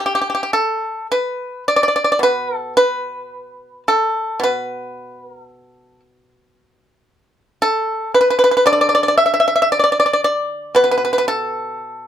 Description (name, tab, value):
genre	chinese traditional, Chinese solo plucked strings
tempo	53-58 BPM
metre	4/4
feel	rubato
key	unclear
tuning	A4 = 441 Hz
part	pipa	solo	0.0-12.1 s	B2 to E5	-15 LUFS	equal	none
room	light reverb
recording	close, detailed microphones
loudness	-14 LUFS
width	side -10 dB against mid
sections	0.0-12.1 A section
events	none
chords	none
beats	1.11 2.22 3.31 | 4.42 5.50 6.56 7.63 | 8.67 9.71 10.76 11.82